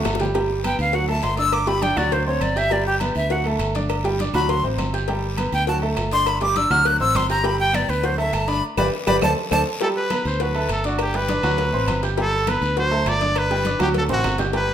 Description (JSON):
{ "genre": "latin, salsa", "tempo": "203 BPM", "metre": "4/4", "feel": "straight", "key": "G major", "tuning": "A4 = 440 Hz", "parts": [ { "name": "clear grand piano", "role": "accompaniment", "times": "0.0-14.7 s", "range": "F#3 to G6", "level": "-25 LUFS", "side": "right 2 dB", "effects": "none" }, { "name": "fingered electric bass", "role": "bass", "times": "0.0-14.7 s", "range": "G1 to D2", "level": "-25 LUFS", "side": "equal", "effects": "none" }, { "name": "agogo bells and timbales", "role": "percussion", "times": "0.1-14.7 s", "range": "none", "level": "-31 LUFS", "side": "right 2 dB", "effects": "none" }, { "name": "claves", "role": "percussion", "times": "0.1-14.4 s", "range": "none", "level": "-36 LUFS", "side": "right 5 dB", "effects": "none" }, { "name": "congas", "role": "percussion", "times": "0.1-14.7 s", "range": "none", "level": "-32 LUFS", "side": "left 1 dB", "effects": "none" }, { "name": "cowbell and bongos", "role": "percussion", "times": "0.1-14.7 s", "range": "none", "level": "-31 LUFS", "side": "left 6 dB", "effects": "none" }, { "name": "guiro", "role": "percussion", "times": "0.1-14.7 s", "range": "none", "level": "-36 LUFS", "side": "left 4 dB", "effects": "none" }, { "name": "bright jazz flute", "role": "melody", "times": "0.7-9.6 s", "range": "G4 to F#6", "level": "-21 LUFS", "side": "equal", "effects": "none" }, { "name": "bright trumpet", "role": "melody", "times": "9.8-14.7 s", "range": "F#4 to D5", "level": "-23 LUFS", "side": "equal", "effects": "none" } ], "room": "wet large studio reverb, RT60 1.4 s", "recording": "minimal, uncompressed stereo recording", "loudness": "-18 LUFS", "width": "side -9 dB against mid", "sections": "0.3-9.8 A section; 9.8-14.7 B section", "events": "drum fill 0.0-0.3, 8.9-9.8, 13.8-14.5; flute solo 0.3-9.8; band accent 8.6-9.8", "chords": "0.3 G; 0.9 D; 1.5 G5; 2.1 D7; 2.7 G; 3.3 D; 3.9 G5; 4.5 D7; 5.1 G; 5.7 D; 6.3 G5; 6.9 D7; 7.4 G; 8.0 D; 8.6 G; 9.2 D5; 9.8 G; 10.4 D; 11.0 G; 11.6 D7; 12.2 G; 12.8 D7; 13.4 G; 13.9 D7", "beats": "0.05 | 0.35 0.64 0.94 1.23 | 1.53 1.83 2.12 2.42 | 2.71 3.01 3.31 3.60 | 3.90 4.19 4.49 4.79 | 5.08 5.38 5.67 5.97 | 6.26 6.56 6.86 7.15 | 7.45 7.74 8.04 8.34 | 8.63 8.93 9.22 9.52 | 9.81 10.11 10.40 10.70 | 10.99 11.29 11.59 11.88 | 12.18 12.47 12.77 13.06 | 13.36 13.65 13.95 14.24 | 14.54" }